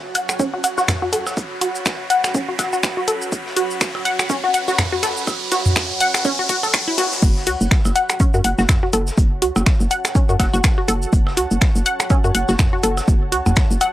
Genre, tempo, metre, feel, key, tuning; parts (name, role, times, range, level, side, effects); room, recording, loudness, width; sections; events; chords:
minimal techno; 123 BPM; 4/4; swing 57% on 16ths; F# minor; A4 = 440 Hz
riser; sound effects; 0.0-7.2 s; -26 LUFS; right 1 dB
granular cloud pad; texture; 0.0-13.9 s; F#4 to B5; -29 LUFS; right 1 dB; built-in reverb, sidechain pumping
house drum kit; drums; 0.1-13.9 s; crash cymbal, finger snaps, hi-hat, shaker; -21 LUFS; left 1 dB; overdrive
shaker and snare drum; drums; 0.1-13.9 s; -34 LUFS; equal
resonant blip pluck; riff; 0.2-13.9 s; C#4 to F#5; -20 LUFS; left 1 dB; chorus, phaser, cassette tape, sidechain pumping, analog delay
electronic percussion blips and toms; percussion; 0.3-13.9 s; -24 LUFS; right 1 dB
electronic kick drum; drums; 0.4-13.7 s; -17 LUFS; equal; overdrive, high-pass filter on kick
hollow knocking FM bass; bass; 7.2-13.8 s; F#1 to F#2; -20 LUFS; equal; sidechain pumping
moderate studio ambience, RT60 0.5 s; -16 LUFS; side -14 dB against mid
0.0-7.2 A section; 7.2-13.9 B section
build-up 0.0-7.2; riser 0.0-7.2; filter sweep on synth arpeggio sound 0.0-7.2; drop 7.2-13.9
0.0 F#5; 7.2 F#m